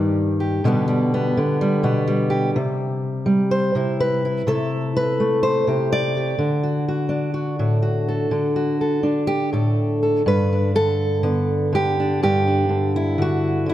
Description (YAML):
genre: folk, solo fingerstyle acoustic guitar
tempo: 62 BPM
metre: 4/4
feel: straight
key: G major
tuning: A4 = 440 Hz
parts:
  - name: fingerpicked steel-string acoustic guitar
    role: solo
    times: 0.0-13.7 s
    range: G2 to D5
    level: -18 LUFS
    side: equal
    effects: none
room: moderate concert hall reverb, RT60 2.1 s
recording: none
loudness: -18 LUFS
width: side -13 dB against mid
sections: 0.0-10.3 A section; 10.3-13.7 B section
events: none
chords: 0.0 Cm (rootless); 0.7 G/B; 2.6 C; 4.5 Am7/C; 6.4 D; 10.3 G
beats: 0.66 1.61 | 2.56 3.52 4.48 5.44 | 6.40 7.36 8.33 9.30 | 10.28 11.25 12.22 13.18